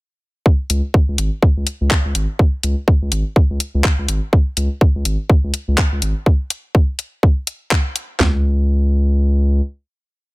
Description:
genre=minimal techno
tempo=124 BPM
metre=4/4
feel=swing 59% on 16ths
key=unclear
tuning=A4 = 443 Hz
part: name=garage drum kit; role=drums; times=0.5-8.3 s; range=handclaps, kick drum, snare drum, toms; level=-13 LUFS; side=equal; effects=none
part: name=saturated sub bass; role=bass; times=0.7-9.6 s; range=G#1 to C#2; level=-17 LUFS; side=equal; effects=sidechain pumping
part: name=garage drum kit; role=drums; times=0.7-8.1 s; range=handclaps, hi-hat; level=-20 LUFS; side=left 2 dB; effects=none
room=digital ambience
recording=none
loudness=-15 LUFS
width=side -22 dB against mid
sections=0.5-8.2 groove; 8.2-10.3 final note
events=none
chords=none

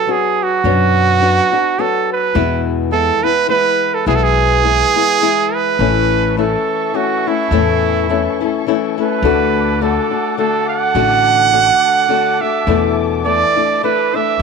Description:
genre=mexican folk, mariachi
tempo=105 BPM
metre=3/4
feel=swing 55% on 8ths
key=unclear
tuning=A4 = 440 Hz
part: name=clear trumpet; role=melody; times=0.0-14.4 s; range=E4 to F#5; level=-14 LUFS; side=right 8 dB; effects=none
part: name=nylon-string guitar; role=accompaniment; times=0.0-14.4 s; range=E2 to F#4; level=-18 LUFS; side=left 13 dB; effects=none
part: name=upright bass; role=bass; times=0.6-14.4 s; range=A1 to F#2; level=-19 LUFS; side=left 1 dB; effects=none
part: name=muted chamber violin section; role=sustained chords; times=5.8-14.4 s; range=A4 to D6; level=-27 LUFS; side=left 3 dB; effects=none
room=wet spring reverb, RT60 1.3 s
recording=1960s-style stereo with parts hard left and right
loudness=-12 LUFS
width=side -5 dB against mid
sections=0.0-14.4 A section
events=none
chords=0.0 Bm; 2.3 E; 5.8 A; 9.2 D; 12.7 E7sus4

